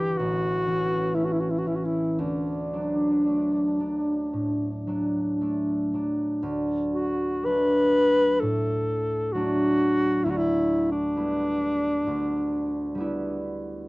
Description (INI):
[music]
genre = classical, romantic duo for alto saxophone and harp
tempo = 55-67 BPM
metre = 4/4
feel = rubato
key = D major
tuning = A4 = 441 Hz
[part]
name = mellow alto saxophone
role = melody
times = 0.0-13.4 s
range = D4 to B4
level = -25 LUFS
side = left 1 dB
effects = none
[part]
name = concert harp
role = accompaniment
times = 0.0-13.9 s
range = G1 to E4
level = -26 LUFS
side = equal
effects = none
[sound]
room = moderate studio ambience, RT60 0.5 s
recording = worn, warbling old tape, cassette tape, warbly pitch drift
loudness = -23 LUFS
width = side -22 dB against mid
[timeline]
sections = 0.0-6.4 A section; 6.4-13.9 B section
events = none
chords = 0.2 A; 2.2 D; 10.3 Em7/D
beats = 0.20 1.16 | 2.19 3.27 4.33 5.40 | 6.42 7.45 8.41 9.34 | 10.25 11.17 12.07 12.98